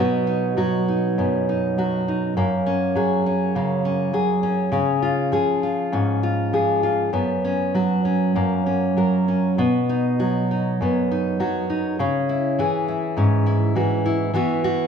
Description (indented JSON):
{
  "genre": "folk, solo fingerstyle acoustic guitar",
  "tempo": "100 BPM",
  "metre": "4/4",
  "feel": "rubato",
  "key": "B major",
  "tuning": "A4 = 440 Hz",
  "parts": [
    { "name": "nylon-string guitar", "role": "solo", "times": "0.0-14.9 s", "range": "F#2 to A#4", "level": "-19 LUFS", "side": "equal", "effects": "none" }
  ],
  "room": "wet recital hall reverb, RT60 1.3 s",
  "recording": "recorded in a church or concert hall",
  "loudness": "-19 LUFS",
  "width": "side -7 dB against mid",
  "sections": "0.0-14.9 A section",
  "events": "none",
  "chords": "0.0 B; 2.4 F#add9; 4.7 C#; 7.1 F#sus4; 8.3 F#; 9.6 B; 12.0 C#m; 14.3 Esus2"
}